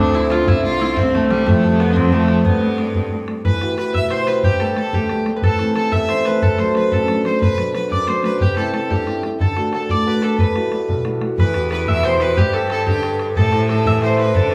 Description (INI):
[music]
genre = celtic folk, Celtic jig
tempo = 121 BPM (dotted quarters)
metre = 6/8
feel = straight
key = G mixolydian, E minor from 3.5 s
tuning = A4 = 440 Hz
[part]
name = concert harp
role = melody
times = 0.0-14.5 s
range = G3 to E5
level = -21 LUFS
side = equal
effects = slapback echo, plate reverb
[part]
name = clear fiddle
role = second line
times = 0.0-14.5 s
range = G3 to E5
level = -28 LUFS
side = equal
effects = none
[part]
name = dark upright piano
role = accompaniment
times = 0.0-14.5 s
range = A1 to C5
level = -26 LUFS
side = equal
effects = none
[part]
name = clear cello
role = bass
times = 0.0-3.4, 11.4-14.5 s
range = C2 to D3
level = -24 LUFS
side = equal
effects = none
[part]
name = bodhran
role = percussion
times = 0.1-14.5 s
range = none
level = -22 LUFS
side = equal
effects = none
[sound]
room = wet studio reverb, RT60 0.6 s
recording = heard from further back in the room, small room reverb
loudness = -18 LUFS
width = mono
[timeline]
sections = 0.0-3.5 A section; 3.5-11.4 B section; 11.4-14.5 B section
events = none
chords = 0.5 C; 1.5 F; 2.5 G; 3.5 Emadd9; 4.4 Gadd9; 5.4 Am; 6.4 D; 7.4 Bm; 8.4 C; 9.4 D; 10.4 Emadd9; 12.4 Gadd9; 13.4 Am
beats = | 0.47 0.97 | 1.47 1.96 | 2.46 2.96 | 3.45 3.95 | 4.44 4.94 | 5.43 5.93 | 6.42 6.92 | 7.42 7.91 | 8.41 8.90 | 9.40 9.89 | 10.39 10.89 | 11.38 11.88 | 12.37 12.87 | 13.36 13.86 | 14.35